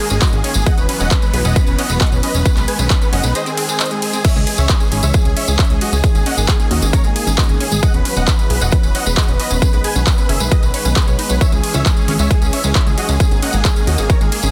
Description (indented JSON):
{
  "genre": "uplifting trance",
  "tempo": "134 BPM",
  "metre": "4/4",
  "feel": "straight",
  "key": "C# dorian",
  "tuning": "A4 = 440 Hz",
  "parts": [
    { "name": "dense compressed supersaw", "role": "melody", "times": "0.0-14.5 s", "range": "F#4 to G#5", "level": "-25 LUFS", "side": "equal", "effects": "sidechain pumping, dub echo" },
    { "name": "filtered supersaw swell", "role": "sustained chords", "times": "0.0-14.5 s", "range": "D#3 to C#4", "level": "-28 LUFS", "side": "equal", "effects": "phaser, sidechain pumping" },
    { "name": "unison pluck", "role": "arpeggios", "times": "0.0-14.5 s", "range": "G#3 to C#5", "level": "-29 LUFS", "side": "equal", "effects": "analog chorus, sidechain pumping, dub echo" },
    { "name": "plucky analog bass", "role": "bass", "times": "0.1-14.5 s", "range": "E1 to D#2", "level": "-20 LUFS", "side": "equal", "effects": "sidechain pumping" },
    { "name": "big-room dance drum kit", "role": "drums", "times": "0.1-14.5 s", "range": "crash cymbal, handclaps, hi-hat, ride cymbal", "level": "-25 LUFS", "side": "equal", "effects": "overdrive" },
    { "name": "tambourine", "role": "percussion", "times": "0.1-14.5 s", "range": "none", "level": "-28 LUFS", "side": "equal", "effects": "none" },
    { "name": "electronic kick drum", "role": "drums", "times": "0.2-14.2 s", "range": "none", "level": "-17 LUFS", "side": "equal", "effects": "overdrive" }
  ],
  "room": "little or no reverb",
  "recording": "dense, heavily limited modern master",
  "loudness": "-15 LUFS",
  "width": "mono",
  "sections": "0.0-4.2 A section; 4.2-14.5 A section",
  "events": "drop 0.0-4.2, 4.2-14.5; break 3.4-4.2",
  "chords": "0.0 G#sus2; 0.7 Esus2; 2.5 B6; 3.4 G#; 4.2 C#m; 6.0 G#sus2; 7.8 Esus2; 9.6 B6; 11.4 C#m; 13.2 G#sus2"
}